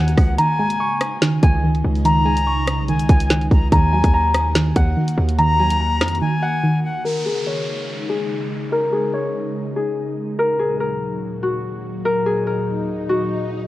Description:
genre	hip hop, drill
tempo	144 BPM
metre	4/4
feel	half-time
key	unclear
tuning	A4 = 440 Hz
part	Celtic harp	melody	0.0-13.7 s	Gb4 to Db6	-21 LUFS	left 2 dB	low-pass filter
part	silver concert flute	second line	0.0-7.0 s	Gb5 to Bb5	-27 LUFS	left 3 dB	digital delay
part	soft round pluck	accompaniment	0.0-7.1 s	Eb3 to Ab3	-22 LUFS	right 1 dB	chorus
part	ethereal airy pad	sustained chords	0.1-13.7 s	Eb2 to Gb4	-27 LUFS	equal	ensemble chorus, built-in reverb, low-pass filter
part	hard-hitting 808-style bass	bass	0.0-6.2 s	Cb2 to F2	-20 LUFS	equal	none
part	drill drum kit	drums	0.1-6.2 s	hi-hat, kick drum, rim click, snare drum	-17 LUFS	equal	none
part	downlifter and swell	sound effects	7.1-13.7 s	none	-32 LUFS	left 3 dB	none
room	light reverb, digital ambience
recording	worn, warbling old tape, cassette tape, warbly pitch drift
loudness	-17 LUFS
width	side -16 dB against mid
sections	0.0-7.1 A section; 7.1-13.7 B section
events	break 0.4-1.2, 6.2-7.1; filter sweep 7.1-13.7; swell 12.4-13.7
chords	0.4 Dbsus2; 3.7 Ebm; 7.1 Dbsus2; 10.4 Ebm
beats	| 0.39 0.80 1.22 1.64 | 2.05 2.47 2.88 3.30 | 3.72 4.13 4.55 4.97 | 5.38 5.80 6.22 6.63 | 7.05 7.47 7.88 8.30 | 8.72 9.13 9.55 9.97 | 10.38 10.80 11.22 11.63 | 12.05 12.47 12.88 13.30

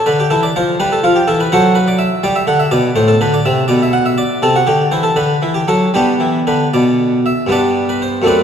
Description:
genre	classical, baroque-style suite movement for harpsichord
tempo	75-84 BPM (dotted quarters)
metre	6/8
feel	rubato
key	G major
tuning	A4 = 440 Hz
part	harpsichord	solo	0.0-8.4 s	F#2 to F#5	-11 LUFS	equal	none
room	wet church reverb, RT60 2.7 s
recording	dark, warm production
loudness	-11 LUFS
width	side -8 dB against mid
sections	0.0-7.5 A section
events	none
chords	0.1 Dm; 1.5 F#m7b5; 2.2 G; 3.0 D5/A; 3.7 N.C.; 4.4 C69; 5.2 D; 5.9 G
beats	| 0.08 0.80 | 1.52 2.24 | 2.96 3.68 | 4.41 5.16 | 5.93 6.72 | 7.50 8.25

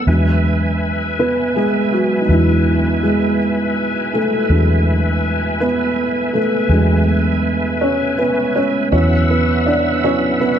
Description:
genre	six-eight pop ballad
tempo	54 BPM (dotted quarters)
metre	6/8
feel	straight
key	unclear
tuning	A4 = 439 Hz
part	felt-muted upright piano	accompaniment	0.0-10.6 s	E3 to D5	-16 LUFS	right 1 dB	none
part	bright tonewheel organ	sustained chords	0.0-10.6 s	B4 to E6	-22 LUFS	left 1 dB	chorus vibrato, slow rotary speaker
part	vintage muted fingered electric bass	bass	0.0-10.6 s	E2	-18 LUFS	equal	none
room	light reverb, studio ambience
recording	lossy compression artefacts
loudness	-14 LUFS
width	side -9 dB against mid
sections	0.0-8.9 A section; 8.9-10.6 B section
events	felt piano solo 0.0-8.9, 8.9-10.6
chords	0.1 E7; 8.9 Esus2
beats	| 0.08 1.19 | 2.30 3.40 | 4.51 5.61 | 6.71 7.82 | 8.93 10.04

